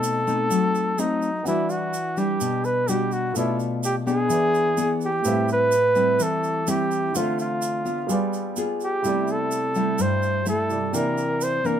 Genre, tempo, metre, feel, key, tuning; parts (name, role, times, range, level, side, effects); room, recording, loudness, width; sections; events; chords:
bossa nova; 127 BPM; 4/4; straight; E minor, A minor from 5.3 s; A4 = 440 Hz
warm flugelhorn; melody; 0.0-11.8 s; D#4 to C5; -23 LUFS; right 1 dB
nylon-string guitar; accompaniment; 0.0-11.8 s; G2 to G#4; -25 LUFS; left 2 dB
warm baby grand piano; accompaniment; 0.0-11.8 s; C3 to F#5; -32 LUFS; right 4 dB
tube shaker; percussion; 0.0-11.8 s; -34 LUFS; right 5 dB
light reverb; minimal, uncompressed stereo recording; -21 LUFS; side -9 dB against mid
0.0-5.3 A section; 5.3-11.8 B section
0.0 B7b9; 1.5 Em9; 3.4 Bm7b5; 4.3 E7; 5.3 Am7; 7.1 Dm7; 8.1 G7b9; 9.0 C6; 10.9 C9